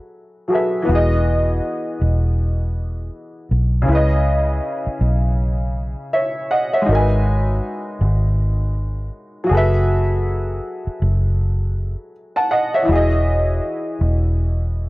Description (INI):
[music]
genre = lo-fi hip hop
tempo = 80 BPM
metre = 4/4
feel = swing 60% on 16ths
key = unclear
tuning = A4 = 436 Hz
[part]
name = clear upright piano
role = accompaniment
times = 0.0-14.9 s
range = C#3 to A5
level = -20 LUFS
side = equal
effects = cassette tape
[part]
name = vintage muted fingered electric bass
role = bass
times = 0.9-14.9 s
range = E1 to C#2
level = -17 LUFS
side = equal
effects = none
[sound]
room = little or no reverb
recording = dry, gritty hardware recording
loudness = -16 LUFS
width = side -20 dB against mid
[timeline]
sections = 0.0-14.9 A section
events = none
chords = 0.0 F#m11; 0.9 Emaj7; 3.9 C#m7; 6.9 G#m7; 9.5 F#m11; 12.9 Emaj7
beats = 0.12 | 0.88 1.62 2.38 3.12 | 3.88 4.62 5.38 6.12 | 6.88 7.62 8.38 9.12 | 9.88 10.62 11.38 12.12 | 12.88 13.62 14.38